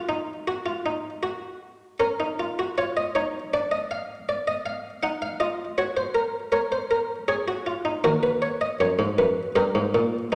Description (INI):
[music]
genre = classical, baroque-style 4-part fugue for harpsichord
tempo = 79 BPM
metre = 4/4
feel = straight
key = Eb minor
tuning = A4 = 439 Hz
[part]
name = buff-stop harpsichord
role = solo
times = 0.0-10.3 s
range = Eb2 to Gb5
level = -26 LUFS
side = equal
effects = none
[sound]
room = wet recital hall reverb, RT60 1.6 s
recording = none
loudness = -26 LUFS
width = mono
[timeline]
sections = 0.0-10.3 A section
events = none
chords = 0.0 N.C.; 2.0 Bbm/Db; 3.5 Dm; 5.0 Ebm; 6.5 Bbm; 8.1 Ebm; 9.6 Eb/G (rootless)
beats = 0.48 1.24 | 2.00 2.77 3.53 4.29 | 5.05 5.80 6.55 7.31 | 8.06 8.81 9.57 10.32